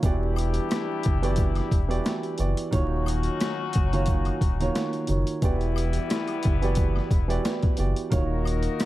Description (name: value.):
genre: hip hop, boom-bap hip-hop.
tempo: 89 BPM.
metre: 4/4.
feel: swing 55% on 16ths.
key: unclear.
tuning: A4 = 440 Hz.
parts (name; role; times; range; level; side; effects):
dark upright piano; accompaniment; 0.0-8.9 s; Eb3 to D5; -29 LUFS; right 4 dB; cassette tape.
clear horn section; stabs; 0.0-8.9 s; E3 to Bb4; -33 LUFS; left 8 dB; slapback echo.
sub bass with octave; bass; 0.0-8.7 s; Eb1 to Gb1; -26 LUFS; equal; none.
boom bap sampler-style drum kit; drums; 0.0-8.9 s; hi-hat, kick drum, rim click, snare drum; -26 LUFS; equal; overdrive.
tube shaker and woodblock; percussion; 0.0-8.9 s; none; -45 LUFS; left 13 dB; none.
room: small room ambience.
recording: dark, warm production, vinyl crackle.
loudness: -23 LUFS.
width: side -16 dB against mid.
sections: 0.0-8.9 A section.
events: none.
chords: 0.0 Em7; 2.7 Ebm7; 5.4 Em7; 8.1 Ebm7.